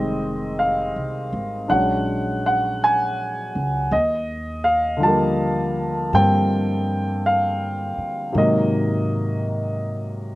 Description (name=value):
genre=jazz ballad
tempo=54 BPM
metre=4/4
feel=swing 67% on 8ths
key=unclear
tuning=A4 = 441 Hz
part: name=warm baby grand piano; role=accompaniment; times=0.0-10.4 s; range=C3 to A5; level=-20 LUFS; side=equal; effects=none
part: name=upright bass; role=bass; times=0.0-10.4 s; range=F1 to Ab2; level=-26 LUFS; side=equal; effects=none
room=little or no reverb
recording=recorded outdoors, with no room sound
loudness=-19 LUFS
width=side -17 dB against mid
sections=0.0-10.4 A section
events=none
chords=0.0 Fm7; 1.7 Bb7alt; 3.9 Ebmaj9; 8.3 Ab9